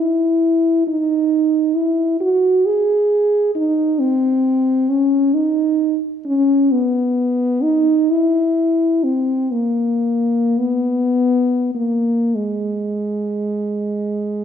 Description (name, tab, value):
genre	classical, free, expressive piece for unaccompanied French horn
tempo	31-46 BPM (dotted quarters)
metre	6/8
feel	rubato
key	G# minor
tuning	A4 = 440 Hz
part	dark French horn	solo	0.0-14.4 s	G#3 to G#4	-15 LUFS	equal	none
room	moderate recital hall reverb, RT60 1.3 s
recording	minimal, uncompressed stereo recording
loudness	-15 LUFS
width	side -8 dB against mid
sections	0.0-14.4 A section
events	none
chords	none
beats	| 0.87 2.20 | 3.56 4.89 | 6.26 7.63 | 9.03 10.59 | 12.35 14.14